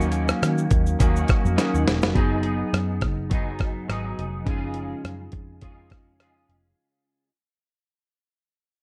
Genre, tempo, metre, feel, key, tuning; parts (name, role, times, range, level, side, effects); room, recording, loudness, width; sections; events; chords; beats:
indie pop, bedroom pop; 104 BPM; 4/4; swing 55% on 16ths; A4 = 441 Hz
electric guitar at the edge of break-up; accompaniment; 0.0-7.3 s; C#3 to G#4; -32 LUFS; equal; ensemble chorus, warbly pitch drift
mellow tine electric piano; accompaniment; 0.0-6.8 s; E#3 to A#4; -32 LUFS; equal; cassette tape
vintage muted picked electric bass; bass; 0.0-6.7 s; E1 to D#3; -29 LUFS; equal
dusty soul sampler-style drum kit; drums; 0.0-6.6 s; hi-hat, kick drum, rim click, shaker, snare drum; -25 LUFS; equal
light reverb; dark, warm production; -23 LUFS; mono
0.0-2.2 A section; 2.2-6.8 B section
drum fill 1.6-2.2; fade-out 2.2-6.8
0.0 D#m7; 2.2 G#m7/F#; 4.5 C#add9/F#
0.43 1.00 1.58 | 2.16 2.73 3.31 3.89 | 4.47 5.04 5.62 6.20